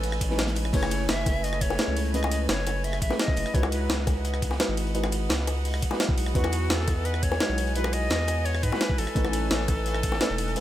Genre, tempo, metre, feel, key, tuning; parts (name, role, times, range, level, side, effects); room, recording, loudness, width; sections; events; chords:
liquid drum and bass; 171 BPM; 4/4; straight; F# dorian; A4 = 440 Hz
bright silver concert flute; melody; 0.0-4.0, 6.4-10.6 s; F#4 to E5; -32 LUFS; left 1 dB; ping-pong delay
felt-muted upright piano; accompaniment; 0.0-10.6 s; F#3 to B4; -32 LUFS; equal; dub echo
bright chamber string section; sustained chords; 0.0-10.6 s; A3 to G#5; -38 LUFS; equal; sidechain pumping
saturated sub bass; bass; 0.0-10.6 s; E1 to G#2; -28 LUFS; equal
breakbeat sampler-style drum kit; drums; 0.0-10.6 s; crash cymbal, hi-hat, ride cymbal, rim click, snare drum; -31 LUFS; equal
crunchy breakbeat drum kit; drums; 0.0-10.6 s; hi-hat, snare drum; -36 LUFS; equal
electronic kick drum; drums; 0.2-10.1 s; -26 LUFS; equal
bongos; percussion; 0.8-10.2 s; -35 LUFS; left 4 dB
little or no reverb; -23 LUFS; side -13 dB against mid
0.0-10.6 A section
kick drops out 0.4-0.7
0.0 Amaj9#11; 0.7 F#m11; 3.5 C#m11; 6.4 Emaj9; 9.0 Amaj9#11